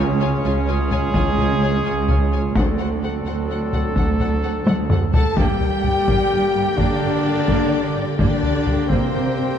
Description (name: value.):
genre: cinematic, epic orchestral film score.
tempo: 85 BPM (dotted quarters).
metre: 12/8.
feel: straight.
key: G minor from 5.4 s.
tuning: A4 = 440 Hz.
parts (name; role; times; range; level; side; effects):
warm symphonic violin section; melody; 0.0-9.6 s; F#5 to G#5; -33 LUFS; left 4 dB; none.
warm symphonic violin section; second line; 0.0-9.6 s; C5 to A5; -31 LUFS; left 3 dB; none.
warm symphonic viola section; accompaniment; 0.0-9.6 s; D3 to A4; -30 LUFS; right 1 dB; none.
dark French horn section; sustained chords; 0.0-9.6 s; C4 to A4; -26 LUFS; left 6 dB; none.
warm trombone section; sustained chords; 0.0-9.6 s; A2 to Bb3; -31 LUFS; right 3 dB; none.
warm woodwind section; sustained chords; 0.0-9.6 s; G3 to D5; -32 LUFS; equal; none.
clear trumpet; stabs; 0.0-9.6 s; C4 to A4; -27 LUFS; right 2 dB; none.
dark symphonic cello section; bass; 0.0-9.6 s; C#2 to A3; -25 LUFS; right 2 dB; none.
rich symphonic double bass section; bass; 0.0-9.4 s; C#2 to G2; -25 LUFS; right 3 dB; none.
solo taiko drums; drums; 0.9-9.3 s; none; -21 LUFS; left 1 dB; none.
mellow hollow silver concert flute; second line; 5.1-9.6 s; C5 to A5; -31 LUFS; equal; none.
room: wet concert hall reverb, RT60 1.9 s.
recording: dark, warm production.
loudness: -17 LUFS.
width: side -8 dB against mid.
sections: 0.0-5.4 A section; 5.4-9.6 B section.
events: drum fill 4.7-5.4.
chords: 0.0 C#; 2.6 D7; 5.4 Gm.